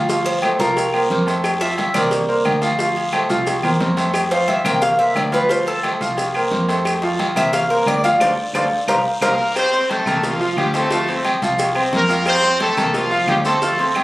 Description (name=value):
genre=latin, salsa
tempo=178 BPM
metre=4/4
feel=straight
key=unclear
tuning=A4 = 440 Hz
part: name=bright concert grand piano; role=accompaniment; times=0.0-14.0 s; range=F3 to F6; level=-21 LUFS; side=right 1 dB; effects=none
part: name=fingered electric bass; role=bass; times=0.0-14.0 s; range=C2 to F2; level=-26 LUFS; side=equal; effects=none
part: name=congas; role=percussion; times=0.1-14.0 s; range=none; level=-33 LUFS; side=left 2 dB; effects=none
part: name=cowbell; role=percussion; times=0.1-14.0 s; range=none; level=-29 LUFS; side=left 2 dB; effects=none
part: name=guiro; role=percussion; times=0.1-14.0 s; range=none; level=-32 LUFS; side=left 1 dB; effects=none
part: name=maracas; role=percussion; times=0.1-14.0 s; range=none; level=-35 LUFS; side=right 1 dB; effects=none
part: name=Cuban tres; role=melody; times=0.3-9.3 s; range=A4 to G5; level=-18 LUFS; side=equal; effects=none
part: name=agogo bells and timbales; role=percussion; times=0.3-14.0 s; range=none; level=-23 LUFS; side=equal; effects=none
part: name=claves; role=percussion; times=0.4-14.0 s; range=none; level=-30 LUFS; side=left 1 dB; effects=none
part: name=bright horn section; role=melody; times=9.2-13.9 s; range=F3 to C5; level=-18 LUFS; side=equal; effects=none
room=moderate studio reverb, RT60 0.7 s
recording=recorded on a phone in the room, club reverb, compression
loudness=-15 LUFS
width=side -18 dB against mid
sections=0.0-9.6 A section; 9.6-14.0 B section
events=Cuban tres solo 0.0-9.6; band accent 8.2-9.6; drum fill 8.9-9.6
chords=0.1 Dm7; 0.8 C7sus4; 1.4 Fmaj7; 2.1 C7sus4; 2.8 Dm7; 3.5 C7sus4; 4.1 F; 4.8 C7sus4; 5.5 Dm7; 6.2 C7sus4; 8.2 Dm7; 8.9 C7sus4; 9.6 Am/C; 10.2 C7sus4; 10.9 Dm7; 11.6 C7sus4; 12.3 F; 12.9 C7sus4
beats=| 0.09 0.43 0.77 1.10 | 1.44 1.78 2.12 2.46 | 2.79 3.13 3.47 3.81 | 4.15 4.49 4.82 5.16 | 5.50 5.84 6.18 6.51 | 6.85 7.19 7.53 7.87 | 8.21 8.54 8.88 9.22 | 9.56 9.90 10.24 10.57 | 10.91 11.25 11.59 11.93 | 12.27 12.60 12.94 13.28 | 13.62 13.95